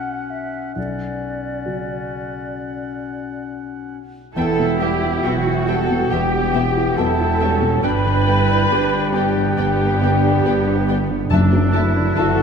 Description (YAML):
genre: cinematic, emotional film score for orchestra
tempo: 69 BPM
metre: 4/4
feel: rubato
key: unclear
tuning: A4 = 441 Hz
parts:
  - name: bright clarinet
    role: second line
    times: 0.0-12.4 s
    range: B3 to D4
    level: -29 LUFS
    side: left 4 dB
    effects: none
  - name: mellow concert flute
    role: second line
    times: 0.0-12.4 s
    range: D5 to B5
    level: -26 LUFS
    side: left 2 dB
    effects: none
  - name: warm oboe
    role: second line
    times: 0.0-12.4 s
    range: E5 to G5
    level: -30 LUFS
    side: left 1 dB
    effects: none
  - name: warm grand piano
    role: accompaniment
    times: 0.0-12.4 s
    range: B1 to G4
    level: -24 LUFS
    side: left 2 dB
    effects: none
  - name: muted symphonic viola section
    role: accompaniment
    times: 4.3-12.4 s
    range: E4 to B4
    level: -23 LUFS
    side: right 3 dB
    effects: none
  - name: mellow French horn section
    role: sustained chords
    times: 4.3-12.4 s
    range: D3 to D4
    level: -26 LUFS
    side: left 5 dB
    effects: none
  - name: muted symphonic violin section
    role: melody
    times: 4.4-12.2 s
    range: G5 to A5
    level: -32 LUFS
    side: left 3 dB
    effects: none
  - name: muted symphonic violin section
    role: second line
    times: 4.4-12.3 s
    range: B3 to E5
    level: -31 LUFS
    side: left 3 dB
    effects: none
  - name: muted chamber cello section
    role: bass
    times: 4.4-12.4 s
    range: B3 to A4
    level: -25 LUFS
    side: right 4 dB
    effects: none
  - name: muted symphonic double bass section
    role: bass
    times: 4.4-12.4 s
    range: E1 to G1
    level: -21 LUFS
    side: right 4 dB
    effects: none
  - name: timpani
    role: percussion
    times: 11.3-12.4 s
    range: F#2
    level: -20 LUFS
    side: left 1 dB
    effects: none
room: wet scoring stage reverb, RT60 1.6 s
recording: none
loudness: -16 LUFS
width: side -6 dB against mid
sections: 0.0-4.4 A section; 4.4-12.4 A section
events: none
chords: 0.0 Bmadd9; 4.4 Emadd9; 7.8 G; 11.3 Dadd9/F#